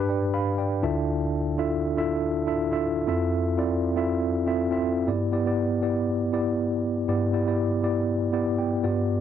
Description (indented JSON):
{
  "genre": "pop",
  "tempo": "120 BPM",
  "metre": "4/4",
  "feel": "swing 55% on 16ths",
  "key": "unclear",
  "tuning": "A4 = 441 Hz",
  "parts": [
    { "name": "mellow tine electric piano", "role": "solo", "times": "0.0-9.2 s", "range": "D2 to B5", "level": "-23 LUFS", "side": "equal", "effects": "medium stereo tremolo" }
  ],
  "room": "light reverb",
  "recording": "dry, close 1970s-style studio recording",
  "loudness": "-23 LUFS",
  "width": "side -9 dB against mid",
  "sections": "0.0-5.1 A section; 5.1-9.2 B section",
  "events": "tine electric piano fill 0.1-1.1, 8.3-9.1",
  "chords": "0.0 G; 0.8 Dmadd9; 3.1 Fmaj7; 5.1 Em7/G"
}